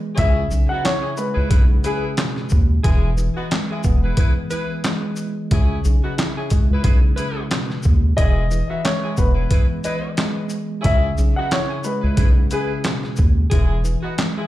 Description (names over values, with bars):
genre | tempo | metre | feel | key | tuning
hip hop, boom-bap hip-hop | 90 BPM | 4/4 | swing 57% on 16ths | C# minor | A4 = 440 Hz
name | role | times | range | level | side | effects
mellow tine electric piano | accompaniment | 0.0-14.5 s | B2 to E4 | -26 LUFS | equal | medium stereo tremolo, high-pass filter, low-pass filter
edgy saxophone section | stabs | 0.1-14.5 s | G#3 to B4 | -30 LUFS | left 1 dB | high-pass filter, low-pass filter, ping-pong delay
warm upright piano | melody | 0.2-2.0, 8.2-12.7 s | G#4 to F#5 | -25 LUFS | left 2 dB | high-pass filter, low-pass filter, ping-pong delay
round analog bass | bass | 0.2-14.0 s | E1 to D#2 | -17 LUFS | equal | none
boom bap sampler-style drum kit | drums | 0.2-14.4 s | handclaps, hi-hat, kick drum, shaker, snare drum | -18 LUFS | equal | none
room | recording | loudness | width
little or no reverb | played on a big sound system in a bare room, large studio reverb | -17 LUFS | side -15 dB against mid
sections
0.0-14.5 A section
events
none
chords
0.2 C#m7; 2.8 E; 5.5 C#m7; 8.2 Emaj7; 10.8 C#m7; 13.5 Emaj7